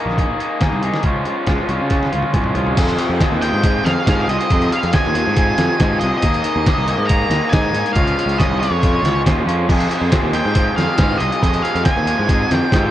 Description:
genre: indie rock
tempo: 139 BPM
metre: 4/4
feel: straight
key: F minor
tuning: A4 = 440 Hz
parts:
  - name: raw garage guitar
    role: riff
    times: 0.0-12.9 s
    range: F2 to Ab4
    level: -19 LUFS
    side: left 1 dB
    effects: overdrive
  - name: fuzz picked electric bass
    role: bass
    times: 0.1-12.9 s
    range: Bb1 to Db3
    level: -20 LUFS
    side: equal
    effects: overdrive
  - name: trip hop sampler-style drum kit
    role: drums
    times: 0.1-12.8 s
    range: crash cymbal, hi-hat, kick drum, snare drum, toms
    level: -19 LUFS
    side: equal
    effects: none
  - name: octave-fuzz lead guitar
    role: melody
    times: 3.4-12.9 s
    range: Db5 to Bb5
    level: -21 LUFS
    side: right 1 dB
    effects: distortion, slapback echo
room: little or no reverb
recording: worn, warbling old tape, cassette tape, warbly pitch drift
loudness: -14 LUFS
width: side -12 dB against mid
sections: 0.0-2.8 A section; 2.8-12.9 B section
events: drum fill 1.9-2.8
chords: 0.0 Ebsus4; 1.0 Db; 2.8 Fm; 6.2 Ebsus4; 8.0 Db; 9.7 Fm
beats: 0.18 0.62 | 1.05 1.48 1.92 2.35 | 2.78 3.21 3.65 4.08 | 4.51 4.94 5.37 5.80 | 6.23 6.67 7.10 7.53 | 7.96 8.39 8.82 9.26 | 9.69 10.12 10.55 10.98 | 11.42 11.85 12.28 12.71

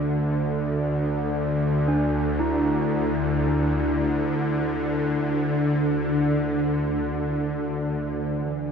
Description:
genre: dark ambient drone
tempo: free time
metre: none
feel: none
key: unclear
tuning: A4 = 440 Hz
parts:
  - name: gamelan-type bronze metallophone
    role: arpeggios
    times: 0.0-8.7 s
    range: D4 to E4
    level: -30 LUFS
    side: equal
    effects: ping-pong delay
  - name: bowed-like drone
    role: drone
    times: 0.0-8.7 s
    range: D2 to D3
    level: -22 LUFS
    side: equal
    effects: built-in reverb
  - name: mellow bass clarinet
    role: melody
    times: 8.3-8.7 s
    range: E3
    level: -42 LUFS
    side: equal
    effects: none
room: wet huge ambient reverb, RT60 8.2 s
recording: none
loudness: -22 LUFS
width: side -6 dB against mid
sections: 0.0-8.3 A section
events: none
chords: 0.0 Dsus2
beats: free time

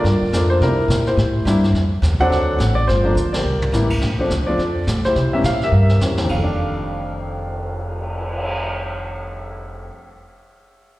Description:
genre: jazz piano trio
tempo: 211 BPM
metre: 4/4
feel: swing 60% on 8ths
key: F mixolydian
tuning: A4 = 441 Hz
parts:
  - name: warm grand piano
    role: melody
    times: 0.0-10.1 s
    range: F2 to Gb5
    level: -20 LUFS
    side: equal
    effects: slapback echo
  - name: upright bass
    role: bass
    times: 0.0-9.9 s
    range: F1 to C3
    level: -19 LUFS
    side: equal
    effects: none
  - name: jazz brush drum kit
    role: drums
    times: 0.0-8.5 s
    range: brushed snare drum, crash cymbal, cymbal swell, hi-hat, kick drum, ride cymbal, snare drum, toms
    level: -28 LUFS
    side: equal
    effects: none
room: light reverb, small room ambience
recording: live gig heard through the venue's PA, recital hall reverb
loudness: -16 LUFS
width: side -17 dB against mid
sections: 0.0-4.0 A section; 4.0-6.3 B section; 6.3-8.6 C section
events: drum fill 3.2-3.7, 5.7-6.3; band accent 3.3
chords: 0.0 Gm7; 0.6 C9; 1.7 F7; 2.3 D7; 2.9 Gm7; 3.4 C9; 4.0 Bbmaj9; 5.2 C7b9; 6.3 F13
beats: 0.05 0.33 | 0.62 0.90 1.18 1.47 | 1.75 2.03 2.31 2.60 | 2.88 3.17 3.45 3.73 | 4.02 4.30 4.58 4.87 | 5.15 5.44 5.72 6.01 | 6.29 6.58 6.86 7.14 | 7.43 7.71 8.00 8.29

